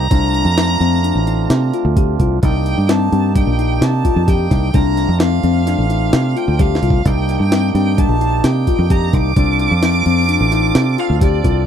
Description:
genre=progressive instrumental, band music in an uneven meter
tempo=130 BPM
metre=5/4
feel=straight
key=C dorian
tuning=A4 = 440 Hz
part: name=rich violin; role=melody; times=0.0-11.7 s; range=D5 to D6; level=-22 LUFS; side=right 3 dB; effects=none
part: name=percussive tonewheel organ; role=accompaniment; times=0.0-11.6 s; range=A3 to A4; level=-24 LUFS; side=right 17 dB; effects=overdrive
part: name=bell-like tine electric piano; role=arpeggios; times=0.0-11.6 s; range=C4 to G4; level=-20 LUFS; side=left 16 dB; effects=wide subtle chorus
part: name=fingered electric bass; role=bass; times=0.0-11.7 s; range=A1 to C3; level=-16 LUFS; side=right 1 dB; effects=none
part: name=jungle sampler-style drum kit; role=drums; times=0.1-11.6 s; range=hi-hat, kick drum, snare drum, toms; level=-17 LUFS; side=equal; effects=none
room=little or no reverb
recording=dry, close 1970s-style studio recording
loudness=-13 LUFS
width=side -8 dB against mid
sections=0.0-11.7 A section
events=drum fill 6.6-7.1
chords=0.1 Bbmaj9; 2.4 Cm7; 4.7 Bbmaj9 (rootless); 7.1 Cm7; 9.4 F13

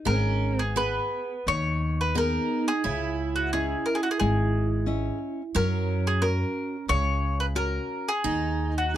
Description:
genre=fado-style ballad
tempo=88 BPM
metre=4/4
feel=rubato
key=G# minor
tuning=A4 = 440 Hz
part: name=nylon-string guitar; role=accompaniment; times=0.0-9.0 s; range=C#3 to D#5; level=-32 LUFS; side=left 4 dB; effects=none
part: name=bowl-back mandolin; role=melody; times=0.1-9.0 s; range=F#4 to C#5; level=-28 LUFS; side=equal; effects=none
part: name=picked twelve-string acoustic guitar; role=second line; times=0.1-9.0 s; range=B3 to E4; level=-32 LUFS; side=right 7 dB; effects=none
part: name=upright bass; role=bass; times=0.1-9.0 s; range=G#1 to F#2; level=-27 LUFS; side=equal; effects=none
room=light reverb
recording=close, detailed microphones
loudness=-24 LUFS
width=side -12 dB against mid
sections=0.1-9.0 A section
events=none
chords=0.1 G#madd9; 2.9 C#madd9; 5.6 F#; 8.2 D#sus4

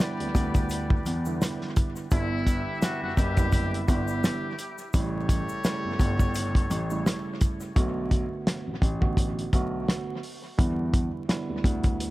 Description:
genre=hip hop, boom-bap hip-hop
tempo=85 BPM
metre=4/4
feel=swing 56% on 16ths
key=B minor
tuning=A4 = 440 Hz
part: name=mellow tine electric piano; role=accompaniment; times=0.0-12.1 s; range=C#3 to F#4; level=-33 LUFS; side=right 4 dB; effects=overdrive, high-pass filter, low-pass filter, dub echo
part: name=clear trumpet section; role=stabs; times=0.0-7.4 s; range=G4 to E5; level=-36 LUFS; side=left 2 dB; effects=high-pass filter, low-pass filter, dub echo
part: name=warm soul drum kit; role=drums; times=0.0-12.1 s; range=hi-hat, kick drum, rim click, snare drum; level=-25 LUFS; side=equal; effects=none
part: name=dark baby grand piano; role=bass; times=0.2-12.1 s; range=F#1 to E2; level=-30 LUFS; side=left 1 dB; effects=none
part: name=tube shaker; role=percussion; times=0.3-7.8 s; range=none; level=-47 LUFS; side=left 4 dB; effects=none
part: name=trumpet with metal mute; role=melody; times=2.1-4.9 s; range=E4 to G4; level=-35 LUFS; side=left 2 dB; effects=high-pass filter, low-pass filter, dub echo
room=studio reverb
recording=echo-heavy mix, vinyl crackle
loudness=-24 LUFS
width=side -18 dB against mid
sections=0.0-7.8 A section; 7.8-12.1 B section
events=none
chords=0.0 Em7; 2.1 G6; 4.9 A7; 7.8 Bm7; 10.6 Em7

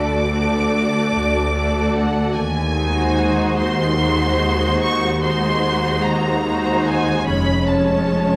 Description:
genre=classical, slow romantic movement for string orchestra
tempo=49 BPM (dotted quarters)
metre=12/8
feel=rubato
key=unclear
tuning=A4 = 441 Hz
part: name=rich symphonic violin section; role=melody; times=0.0-8.4 s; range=F#5 to D6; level=-26 LUFS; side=equal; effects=none
part: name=warm symphonic violin section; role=second line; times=0.0-8.4 s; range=C#4 to D5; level=-25 LUFS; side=equal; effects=none
part: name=rich symphonic viola section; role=accompaniment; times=0.0-8.4 s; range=G#3 to F#4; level=-25 LUFS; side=equal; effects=none
part: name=bright symphonic cello section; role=bass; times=0.0-8.3 s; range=D2 to E#2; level=-26 LUFS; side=equal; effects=none
part: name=clear symphonic double bass section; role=bass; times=0.0-8.3 s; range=E#1 to D#2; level=-26 LUFS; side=equal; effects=none
room=wet scoring stage reverb, RT60 1.7 s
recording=none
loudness=-19 LUFS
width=mono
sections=0.0-8.4 A section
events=none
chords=0.0 D; 2.4 G#7/D#; 7.3 C#/E#

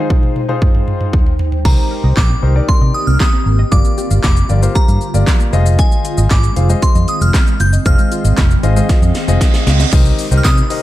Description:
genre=dance-pop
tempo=116 BPM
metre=4/4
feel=straight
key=F dorian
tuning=A4 = 440 Hz
part: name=clear concert grand piano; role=accompaniment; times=0.0-10.8 s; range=Eb4 to F5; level=-23 LUFS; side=left 6 dB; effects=sidechain pumping
part: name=ethereal airy pad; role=sustained chords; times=0.0-10.8 s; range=C3 to G5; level=-24 LUFS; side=right 1 dB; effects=ensemble chorus, built-in reverb, sidechain pumping
part: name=house drum kit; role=drums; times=0.1-10.8 s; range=crash cymbal, handclaps, hi-hat, kick drum, shaker, snare drum, toms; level=-13 LUFS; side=equal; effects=overdrive
part: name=wide unison pluck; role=arpeggios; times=1.6-9.9 s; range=Eb3 to F5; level=-28 LUFS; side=right 2 dB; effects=sidechain pumping, digital delay
part: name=glassy synth bell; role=melody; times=1.7-10.8 s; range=Ab5 to G6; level=-22 LUFS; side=equal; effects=chorus, digital delay
part: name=fingered electric bass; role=bass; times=1.7-10.6 s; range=F1 to C3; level=-13 LUFS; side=equal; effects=sidechain pumping
part: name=reverse cymbal and downlifter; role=sound effects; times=9.1-10.8 s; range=none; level=-24 LUFS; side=right 7 dB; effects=none
part: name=tambourine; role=percussion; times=10.4-10.6 s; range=none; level=-28 LUFS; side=right 12 dB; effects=none
room=little or no reverb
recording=none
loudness=-11 LUFS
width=side -15 dB against mid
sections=0.0-1.7 A section; 1.7-9.9 B section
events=drum fill 0.0-1.7, 8.9-9.9; reverse cymbal 9.1-9.9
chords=0.0 Fm7; 1.7 Cm7; 3.7 Gm7; 5.5 Fm7; 9.9 Cm7

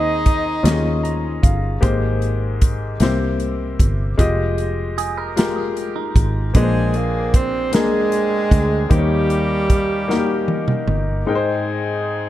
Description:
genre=slow gospel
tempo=51 BPM (dotted quarters)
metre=6/8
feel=straight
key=Ab major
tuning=A4 = 440 Hz
part: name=breathy tenor saxophone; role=melody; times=0.0-1.4, 6.6-10.8 s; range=G3 to Eb4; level=-22 LUFS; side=right 4 dB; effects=tape echo
part: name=bright saxophone section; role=melody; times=0.0-1.4, 6.6-12.3 s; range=Bb3 to Eb5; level=-26 LUFS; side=left 2 dB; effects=tape echo
part: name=clear grand piano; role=accompaniment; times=0.0-12.3 s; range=Ab2 to Bb5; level=-22 LUFS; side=left 4 dB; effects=none
part: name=fingered electric bass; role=bass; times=0.0-11.2 s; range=F1 to Eb2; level=-21 LUFS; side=equal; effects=none
part: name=natural country drum kit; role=drums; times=0.3-11.1 s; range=hi-hat, kick drum, snare drum, toms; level=-18 LUFS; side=equal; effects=none
part: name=clean electric guitar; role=second line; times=5.0-6.5 s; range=Eb4 to Bb4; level=-27 LUFS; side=right 9 dB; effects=tape echo
room=light reverb, small room ambience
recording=dark, warm production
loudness=-16 LUFS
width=side -13 dB against mid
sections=0.0-11.3 A section; 11.3-12.3 B section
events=grand piano fill 0.7-1.8; drum fill 10.1-11.3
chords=0.0 Ab/Eb; 0.7 Eb9sus4; 1.8 Abmaj9; 3.0 C7; 4.2 Fm9; 6.6 Bb9; 8.9 Eb7; 11.3 Abmaj7

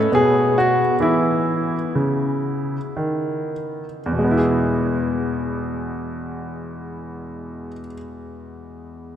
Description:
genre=classical, baroque-style suite movement for grand piano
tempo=53-75 BPM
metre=3/4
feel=rubato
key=E major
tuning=A4 = 439 Hz
part: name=clear baby grand piano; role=solo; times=0.0-9.2 s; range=E2 to G#4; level=-20 LUFS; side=equal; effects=none
room=wet cathedral reverb, RT60 5.1 s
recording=none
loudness=-18 LUFS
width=side -10 dB against mid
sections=0.0-4.0 A section; 4.0-9.2 B section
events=slowing down 0.0-4.0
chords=0.1 N.C.; 1.0 E5; 4.0 E

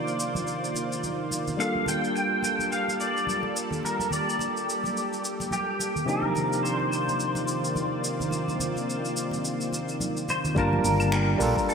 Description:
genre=sunset chillout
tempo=107 BPM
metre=4/4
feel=swing 58% on 16ths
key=C dorian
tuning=A4 = 441 Hz
part: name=pedal steel guitar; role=melody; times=0.0-11.7 s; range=G4 to G5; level=-29 LUFS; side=equal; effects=ensemble chorus, digital delay
part: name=barky tine electric piano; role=accompaniment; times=0.0-11.7 s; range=C3 to A5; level=-31 LUFS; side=equal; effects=auto-pan
part: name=lush unison pad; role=sustained chords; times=0.0-11.7 s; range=Eb3 to A5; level=-31 LUFS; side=equal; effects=chorus
part: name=vintage brush drum kit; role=drums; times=0.1-11.7 s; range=claves, finger snaps, hi-hat, shaker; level=-34 LUFS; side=equal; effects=gated reverb
part: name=congas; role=percussion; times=0.4-11.7 s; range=none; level=-36 LUFS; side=right 2 dB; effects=none
part: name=fretless electric bass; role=bass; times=10.6-11.5 s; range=G1 to Bb1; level=-25 LUFS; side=equal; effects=none
part: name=electronic kick drum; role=drums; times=10.6-11.7 s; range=none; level=-31 LUFS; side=equal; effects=overdrive
room=wet lush hall reverb, RT60 2.9 s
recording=bright 1980s-style digital production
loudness=-24 LUFS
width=side -6 dB against mid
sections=0.0-10.6 A section; 10.6-11.7 B section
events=none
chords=0.0 Cm11; 1.6 Gm9; 6.1 Cm11; 10.6 Gm9

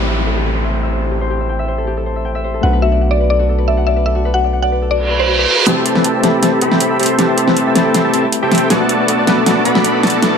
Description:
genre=future bass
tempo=158 BPM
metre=4/4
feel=half-time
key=A dorian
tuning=A4 = 440 Hz
part: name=tine electric piano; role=accompaniment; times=0.0-10.4 s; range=A3 to B5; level=-20 LUFS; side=left 3 dB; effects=overdrive, medium stereo tremolo, ping-pong delay
part: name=Celtic harp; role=arpeggios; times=0.0-10.4 s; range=F#4 to G5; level=-22 LUFS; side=left 4 dB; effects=low-pass filter, ping-pong delay
part: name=long sustained 808-style bass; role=bass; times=0.0-5.5 s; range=A1 to B1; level=-17 LUFS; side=equal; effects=tube saturation
part: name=downlifter, reverse cymbal and riser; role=sound effects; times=0.0-10.4 s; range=none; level=-20 LUFS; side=right 3 dB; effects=none
part: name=mallet-like synth pluck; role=melody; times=2.6-5.6 s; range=B4 to F#5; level=-18 LUFS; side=left 1 dB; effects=chorus, digital delay
part: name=dense compressed supersaw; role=riff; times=5.7-10.4 s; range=B3 to C6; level=-15 LUFS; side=right 1 dB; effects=low-pass filter, ping-pong delay
part: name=pop drum kit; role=drums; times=5.7-10.3 s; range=hi-hat, snare drum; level=-16 LUFS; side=equal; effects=overdrive
room=moderate lush hall reverb, RT60 1.6 s, digital ambience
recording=none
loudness=-12 LUFS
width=side -6 dB against mid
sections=0.0-5.7 A section; 5.7-10.4 B section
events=reverse cymbal 5.0-5.7; build-up 5.7-10.4; drum fill 5.7-10.4; filter sweep on supersaw synth 5.7-10.4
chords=0.0 Am7; 2.6 Bm7; 5.5 N.C.; 5.7 Am7; 8.7 Bm7

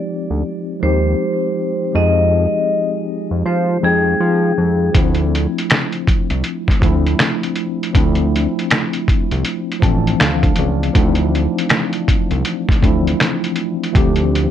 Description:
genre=lo-fi hip hop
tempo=80 BPM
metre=4/4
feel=swing 60% on 16ths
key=D minor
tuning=A4 = 440 Hz
part: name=mellow tine electric piano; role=accompaniment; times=0.0-14.5 s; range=E3 to A5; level=-19 LUFS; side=left 1 dB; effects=medium stereo tremolo, cassette tape, low-pass filter
part: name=fat analog bass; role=bass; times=0.3-14.5 s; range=A1 to F3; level=-17 LUFS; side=equal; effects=none
part: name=vibraphone with hard mallets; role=melody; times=0.8-4.9 s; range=Ab4 to Eb5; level=-19 LUFS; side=left 2 dB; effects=low-pass filter, analog delay
part: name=lo-fi sampler-style drum kit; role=drums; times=4.9-14.5 s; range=finger snaps, hi-hat, kick drum, snare drum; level=-16 LUFS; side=equal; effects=none
room=light reverb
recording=cassette tape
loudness=-14 LUFS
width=side -10 dB against mid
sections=0.0-14.5 A section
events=tine electric piano fill 9.4-10.9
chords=0.0 Fm9; 4.9 Dm9

